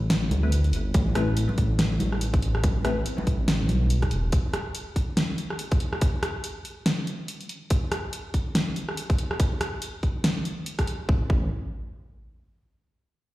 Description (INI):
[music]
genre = deep dubstep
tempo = 142 BPM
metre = 4/4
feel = swing 58% on 16ths, half-time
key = A minor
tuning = A4 = 438 Hz
[part]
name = dark detuned saw bass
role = bass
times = 0.0-4.3, 11.1-11.5 s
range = E1 to D2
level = -24 LUFS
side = equal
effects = none
[part]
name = deep house drum kit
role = drums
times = 0.1-11.0 s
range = hi-hat, rim click, snare drum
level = -28 LUFS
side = equal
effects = none
[part]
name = congas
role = percussion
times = 0.3-3.8 s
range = none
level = -32 LUFS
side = equal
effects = none
[part]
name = filtered dub chord stab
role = stabs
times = 0.4-2.9 s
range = A3 to B4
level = -32 LUFS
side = left 3 dB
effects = phaser, wide subtle chorus, cassette tape, dub echo
[part]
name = electronic kick drum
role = drums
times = 0.9-11.4 s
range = none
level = -22 LUFS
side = equal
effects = none
[sound]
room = moderate lush hall reverb, RT60 1.7 s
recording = played on a big sound system in a bare room, large studio reverb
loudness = -23 LUFS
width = side -17 dB against mid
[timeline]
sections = 0.0-11.1 A section; 11.1-12.8 B section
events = none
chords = none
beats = 0.10 0.52 | 0.95 1.37 1.79 2.21 | 2.64 3.06 3.48 3.90 | 4.33 4.75 5.17 5.59 | 6.02 6.44 6.86 7.28 | 7.71 8.13 8.55 8.97 | 9.40 9.82 10.24 10.66 | 11.09